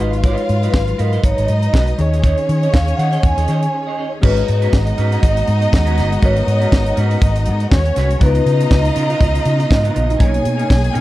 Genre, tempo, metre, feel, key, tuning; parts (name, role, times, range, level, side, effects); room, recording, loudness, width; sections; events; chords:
disco; 120 BPM; 4/4; swing 56% on 16ths; G# dorian; A4 = 440 Hz
warm studio violin section; second line; 0.0-11.0 s; C#4 to G#5; -24 LUFS; left 2 dB
bell-like tine electric piano; accompaniment; 0.0-11.0 s; B2 to C#5; -25 LUFS; left 3 dB
semi-hollow electric guitar; accompaniment; 0.0-11.0 s; B3 to D#5; -29 LUFS; right 6 dB; spring reverb
dark studio string section; sustained chords; 0.0-11.0 s; B2 to A#5; -26 LUFS; right 1 dB
fingered electric bass; bass; 0.0-11.0 s; G1 to D#3; -17 LUFS; equal
tight funk drum kit; drums; 0.1-11.0 s; crash cymbal, hi-hat, kick drum, snare drum; -15 LUFS; equal
vibraphone with soft mallets; melody; 0.2-10.9 s; A#4 to G#5; -22 LUFS; right 1 dB
small room ambience; dark, warm production; -13 LUFS; side -16 dB against mid
0.0-4.2 A section; 4.2-11.0 B section
break 3.7-4.2
0.0 G#m7; 2.0 D#7sus4; 4.2 G#m11; 8.2 C#13; 10.2 Bmaj9